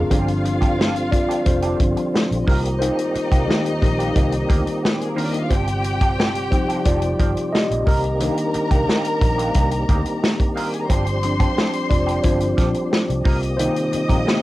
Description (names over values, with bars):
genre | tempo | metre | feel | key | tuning
lush 1970s-style soul | 89 BPM | 4/4 | straight | C minor | A4 = 440 Hz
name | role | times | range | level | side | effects
warm studio string section | second line | 0.0-14.4 s | G3 to Eb6 | -27 LUFS | left 1 dB | cassette tape
mellow tine electric piano | accompaniment | 0.0-14.4 s | Eb3 to Eb5 | -23 LUFS | left 1 dB | medium stereo tremolo, cassette tape
percussive tonewheel organ | sustained chords | 0.0-14.4 s | C3 to G4 | -27 LUFS | right 1 dB | slow rotary speaker, overdrive, chorus vibrato, cassette tape
vintage muted fingered electric bass | bass | 0.0-14.2 s | F1 to D2 | -24 LUFS | equal | none
electric guitar through a small old amp | riff | 0.1-14.4 s | Eb3 to Bb4 | -29 LUFS | right 3 dB | wah, cassette tape
warm soul drum kit | drums | 0.1-14.4 s | hi-hat, kick drum, snare drum | -20 LUFS | equal | cassette tape
room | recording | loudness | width
little or no reverb | home recording on cassette | -17 LUFS | side -17 dB against mid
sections
0.1-14.4 A section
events
tine electric piano solo 0.1-14.4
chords
0.1 G7sus4; 2.5 Cm7; 5.5 G7sus4; 7.9 Cm7; 10.9 G7sus4; 13.3 Cm7